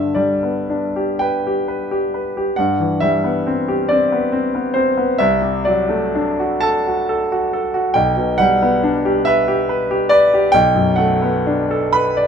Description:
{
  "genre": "classical, romantic nocturne for solo piano",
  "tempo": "37-48 BPM (dotted quarters)",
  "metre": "12/8",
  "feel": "rubato",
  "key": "G major",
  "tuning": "A4 = 440 Hz",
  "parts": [
    { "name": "clear concert grand piano", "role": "solo", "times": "0.0-12.3 s", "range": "B1 to B5", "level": "-15 LUFS", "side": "equal", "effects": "none" }
  ],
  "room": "moderate large studio reverb, RT60 0.9 s",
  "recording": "none",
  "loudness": "-15 LUFS",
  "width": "side -7 dB against mid",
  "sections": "0.0-12.3 A section",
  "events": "none",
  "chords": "0.0 G; 2.6 Cmaj7/G; 5.2 D7/C; 8.0 G/B; 10.5 Bm7"
}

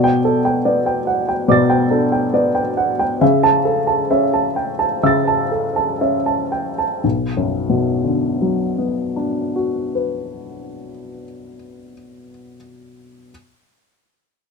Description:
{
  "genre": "neoclassical minimalist piano",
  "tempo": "57-74 BPM",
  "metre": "4/4",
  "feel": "rubato",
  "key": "B minor",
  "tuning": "A4 = 441 Hz",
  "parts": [
    { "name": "warm upright piano", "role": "solo", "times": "0.0-13.3 s", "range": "B1 to A6", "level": "-16 LUFS", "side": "equal", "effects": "none" }
  ],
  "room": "light reverb",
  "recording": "minimal, uncompressed stereo recording",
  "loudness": "-16 LUFS",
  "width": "side -4 dB against mid",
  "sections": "0.0-7.0 A section; 7.0-11.1 B section",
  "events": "slowing down 0.0-7.0",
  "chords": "0.0 Gadd9/B; 3.2 A/C#; 7.0 Bm"
}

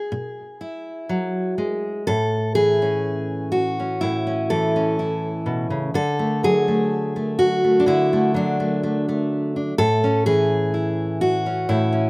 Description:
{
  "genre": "folk, solo fingerstyle acoustic guitar",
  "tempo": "62 BPM",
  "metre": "4/4",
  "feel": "straight",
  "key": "A major",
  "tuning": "A4 = 440 Hz",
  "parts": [
    { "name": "fingerpicked steel-string acoustic guitar", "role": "solo", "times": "0.0-12.1 s", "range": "A2 to A4", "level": "-19 LUFS", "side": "equal", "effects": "none" }
  ],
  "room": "little or no reverb",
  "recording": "recorded outdoors, with no room sound",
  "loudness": "-18 LUFS",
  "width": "side -26 dB against mid",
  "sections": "0.0-2.1 A section; 2.1-12.1 B section",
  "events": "none",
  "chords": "0.0 E; 2.1 A; 6.0 D; 9.8 A"
}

